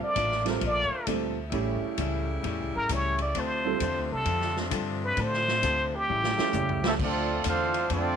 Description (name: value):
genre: jazz, big band swing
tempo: 132 BPM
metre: 4/4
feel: swing 65% on 8ths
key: D minor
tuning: A4 = 440 Hz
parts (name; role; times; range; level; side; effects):
- trumpet with plunger mute; melody; 0.0-6.9 s; G4 to D5; -27 LUFS; equal; none
- hollow-body jazz guitar; accompaniment; 0.0-8.2 s; A2 to A4; -35 LUFS; left 12 dB; none
- warm grand piano; accompaniment; 0.0-7.0 s; G3 to A4; -32 LUFS; right 16 dB; none
- bright saxophone section; sustained chords; 0.0-8.2 s; C3 to F4; -37 LUFS; left 1 dB; none
- upright bass; bass; 0.0-8.2 s; A1 to A2; -32 LUFS; equal; none
- swinging big-band drum kit; drums; 0.2-8.0 s; crash cymbal, hi-hat, kick drum, ride cymbal, snare drum, toms; -34 LUFS; equal; none
- clear trombone section; second line; 6.8-8.2 s; F3 to F4; -35 LUFS; right 14 dB; none
- clear trumpet section; melody; 6.9-8.2 s; C4 to F5; -27 LUFS; right 2 dB; none
room: light reverb, small room ambience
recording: 1960s-style stereo with parts hard left and right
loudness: -25 LUFS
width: side -7 dB against mid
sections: 0.0-7.0 A section; 7.0-8.2 B section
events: muted trumpet solo 0.0-7.0; drum fill 6.1-7.0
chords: 0.0 Bbmaj7; 1.5 A7; 3.3 Dm7; 6.1 A7; 7.0 Dm7